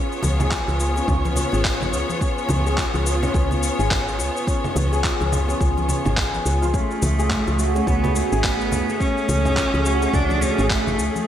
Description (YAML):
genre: organic downtempo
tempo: 106 BPM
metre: 4/4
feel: swing 59% on 16ths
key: unclear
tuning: A4 = 438 Hz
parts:
  - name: bright studio string section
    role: sustained chords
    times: 0.0-11.3 s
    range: A3 to C#5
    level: -28 LUFS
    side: left 1 dB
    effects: sidechain pumping
  - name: santur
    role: arpeggios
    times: 0.0-11.3 s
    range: B3 to G#4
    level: -25 LUFS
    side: equal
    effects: digital delay, slapback echo
  - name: electronic shaker, congas and handclaps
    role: drums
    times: 0.1-11.2 s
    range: none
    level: -27 LUFS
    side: equal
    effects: none
  - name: woody FM bass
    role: bass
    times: 0.2-11.1 s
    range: G#1 to C#2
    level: -23 LUFS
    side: equal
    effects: sidechain pumping
  - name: congas and bongos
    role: percussion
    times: 0.2-11.2 s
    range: none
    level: -31 LUFS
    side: left 1 dB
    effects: none
  - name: electronic kick drum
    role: drums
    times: 0.5-10.8 s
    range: none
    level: -24 LUFS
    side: equal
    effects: none
  - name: clear cello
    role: melody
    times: 6.7-11.2 s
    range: A3 to D4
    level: -24 LUFS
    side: equal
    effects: digital delay, slapback echo
room: moderate lush hall reverb, RT60 2.6 s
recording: big arena sound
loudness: -18 LUFS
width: side -10 dB against mid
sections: 0.0-11.3 A section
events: none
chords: 0.0 C#7; 6.7 F#madd9